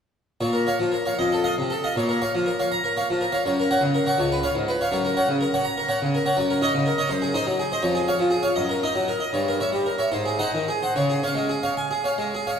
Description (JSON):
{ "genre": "classical, baroque-style suite movement for harpsichord", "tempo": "72-84 BPM (dotted quarters)", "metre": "6/8", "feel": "rubato", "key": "Bb minor, Db major from 6.4 s", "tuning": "A4 = 444 Hz", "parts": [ { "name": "harpsichord", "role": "solo", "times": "0.4-12.6 s", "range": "Db2 to Bb5", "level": "-21 LUFS", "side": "equal", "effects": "none" } ], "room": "wet church reverb, RT60 2.8 s", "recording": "heard from further back in the room", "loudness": "-21 LUFS", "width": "side -7 dB against mid", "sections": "0.4-12.6 A section", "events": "none", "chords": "0.4 Bbm; 1.2 F7; 2.0 Bbm; 3.5 Gb; 4.2 Db7; 5.0 Gb; 6.4 Ebm7/Gb; 7.1 Ab7/Gb; 7.8 Db/F; 8.6 Ebm/Gb; 9.3 Gdim7; 10.1 Ab7; 10.9 Db" }